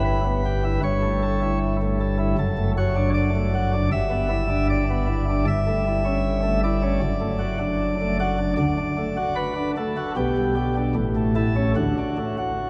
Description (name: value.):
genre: classical, chorale-style piece for pipe organ.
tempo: 77 BPM.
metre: 4/4.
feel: straight.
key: D major.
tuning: A4 = 440 Hz.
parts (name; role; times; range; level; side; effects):
chamber organ, principal chorus; solo; 0.0-12.7 s; F#1 to E5; -23 LUFS; equal; none.
room: wet cathedral reverb, RT60 6.6 s.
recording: none.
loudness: -23 LUFS.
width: mono.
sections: 0.0-12.7 A section.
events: none.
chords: 0.0 Em/G; 0.8 A7/G; 2.4 D/F#; 3.9 Em7/G; 5.5 A7/G; 7.0 D/F#; 8.6 D; 10.2 G/B; 11.0 A; 11.8 D.